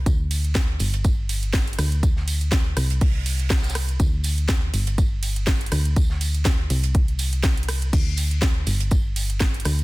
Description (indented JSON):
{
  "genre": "piano house",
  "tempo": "122 BPM",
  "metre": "4/4",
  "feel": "swing 55% on 16ths",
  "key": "unclear",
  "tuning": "A4 = 439 Hz",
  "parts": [
    { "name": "solid FM bass", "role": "bass", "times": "0.0-9.8 s", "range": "G1 to D2", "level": "-23 LUFS", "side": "equal", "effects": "sidechain pumping" },
    { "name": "deep reggae drum kit", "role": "drums", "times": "0.1-9.8 s", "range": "hi-hat, snare drum, tambourine", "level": "-36 LUFS", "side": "right 3 dB", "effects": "sidechain pumping on hats, high-pass filter on hats, small room ambience, high-pass filter on snare, sidechain pumping on perc, high-pass filter on perc, high-pass filter on room" },
    { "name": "electronic kick drum", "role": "drums", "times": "0.1-9.5 s", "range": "none", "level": "-20 LUFS", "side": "equal", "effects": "small room ambience" },
    { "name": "house drum kit", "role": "drums", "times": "0.1-9.8 s", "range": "crash cymbal, hi-hat, ride cymbal, rim click, snare drum", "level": "-28 LUFS", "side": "right 1 dB", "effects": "small room ambience" }
  ],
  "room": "studio ambience",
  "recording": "dense, heavily limited modern master",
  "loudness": "-19 LUFS",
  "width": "side -20 dB against mid",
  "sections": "0.0-9.8 A section",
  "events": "none",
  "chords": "none"
}